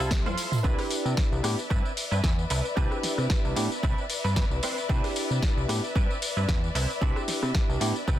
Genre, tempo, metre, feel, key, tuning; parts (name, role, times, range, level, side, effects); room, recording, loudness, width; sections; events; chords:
nu-disco, nu disco; 113 BPM; 4/4; swing 55% on 16ths; C major; A4 = 437 Hz
rich studio string section; sustained chords; 0.0-8.2 s; A4 to C6; -34 LUFS; left 3 dB; vintage 12-bit sampler grit, sidechain pumping
direct-recorded clean electric guitar; riff; 0.0-8.2 s; C4 to C5; -34 LUFS; right 4 dB; ensemble chorus, slapback echo
fat analog bass; bass; 0.0-8.2 s; C2 to C3; -28 LUFS; equal
electronic kick drum; drums; 0.1-8.2 s; -26 LUFS; equal
house drum kit; drums; 0.1-8.2 s; hi-hat, rim click, snare drum, tambourine, toms; -32 LUFS; left 1 dB; soft clipping on snare
tambourine; percussion; 0.1-0.6 s; -44 LUFS; right 2 dB
bell-like tine electric piano; accompaniment; 0.6-7.9 s; B3 to B4; -32 LUFS; right 1 dB; phaser, sidechain pumping, slapback echo
digital ambience; dense, heavily limited modern master; -24 LUFS; side -12 dB against mid
0.6-8.2 A section
drum fill 0.1-0.6; drop 0.6-8.2
0.0 Fmaj7; 0.6 Cmaj9